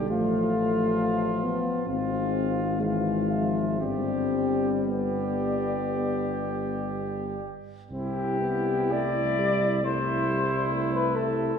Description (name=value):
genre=classical, hymn-like piece for brass band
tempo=56-70 BPM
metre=4/4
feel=rubato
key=C major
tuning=A4 = 444 Hz
part: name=dark cornet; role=melody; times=0.0-11.6 s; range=G4 to F5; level=-31 LUFS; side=left 4 dB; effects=none
part: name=clear flugelhorn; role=second line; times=0.0-11.5 s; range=E4 to G4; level=-33 LUFS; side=right 6 dB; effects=none
part: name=mellow euphonium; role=accompaniment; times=0.0-11.5 s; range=G3 to C4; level=-29 LUFS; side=left 3 dB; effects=none
part: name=warm trombone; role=accompaniment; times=0.0-11.6 s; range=D3 to C4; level=-34 LUFS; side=right 2 dB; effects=none
part: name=mellow tuba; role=bass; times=0.0-11.5 s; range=G1 to C2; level=-31 LUFS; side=equal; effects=none
room=wet concert hall reverb, RT60 2.1 s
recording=heard from further back in the room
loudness=-24 LUFS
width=side -7 dB against mid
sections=0.0-7.9 A section; 7.9-11.6 B section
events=none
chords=0.1 F/A; 1.9 Fm/Ab; 3.8 G; 7.9 C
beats=| 0.10 0.98 1.88 2.81 | 3.81 4.88 5.90 6.91 | 7.92 8.92 9.84 10.71 | 11.58